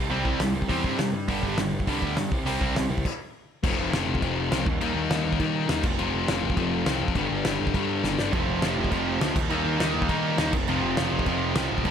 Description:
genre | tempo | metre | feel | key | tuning
punk rock | 204 BPM | 4/4 | straight | unclear | A4 = 442 Hz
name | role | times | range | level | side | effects
crunchy overdriven guitar | riff | 0.0-11.9 s | F2 to G4 | -31 LUFS | right 1 dB | none
fuzz picked electric bass | bass | 0.0-11.9 s | F1 to Eb3 | -31 LUFS | equal | overdrive
distorted electric guitar | riff | 0.1-11.9 s | F2 to Eb4 | -29 LUFS | left 11 dB | overdrive
tight distorted guitar | riff | 0.1-2.9, 8.3-11.9 s | F2 to Eb4 | -29 LUFS | right 11 dB | distortion
loose indie drum kit | drums | 0.3-11.9 s | crash cymbal, hi-hat, kick drum, snare drum | -28 LUFS | equal | none
room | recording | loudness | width
little or no reverb | none | -23 LUFS | side -8 dB against mid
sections
0.0-3.6 A section; 3.6-11.9 B section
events
stop 3.1-3.6; drum fill 8.0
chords
0.0 C; 1.3 G; 2.3 C; 3.6 F; 4.7 Eb; 5.8 F; 7.2 G; 8.3 F; 9.4 Eb; 10.5 F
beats
| 0.11 0.40 0.70 0.99 | 1.29 1.58 1.88 2.17 | 2.46 2.76 3.05 3.35 | 3.64 3.94 4.23 4.52 | 4.82 5.11 5.40 5.70 | 5.99 6.28 6.58 6.87 | 7.16 7.46 7.75 8.04 | 8.34 8.63 8.92 9.21 | 9.51 9.80 10.09 10.39 | 10.68 10.97 11.27 11.56 | 11.86

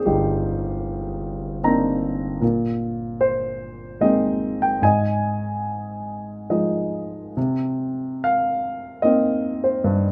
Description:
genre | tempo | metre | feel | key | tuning
classical, lyrical solo piano | 69-78 BPM | 3/4 | rubato | C minor | A4 = 440 Hz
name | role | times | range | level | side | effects
clear concert grand piano | solo | 0.0-10.1 s | G1 to Bb5 | -23 LUFS | equal | none
room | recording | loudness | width
light reverb | close, detailed microphones | -23 LUFS | mono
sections
0.0-10.1 A section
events
grand piano fill 1.2-2.4, 6.1-7.4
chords
0.0 Cm9; 2.4 Bb9sus4; 4.8 Fm7/Ab; 7.4 Cm7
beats
| 0.07 0.85 1.63 | 2.42 3.21 4.01 | 4.82 5.65 6.50 | 7.37 8.22 9.04 | 9.85

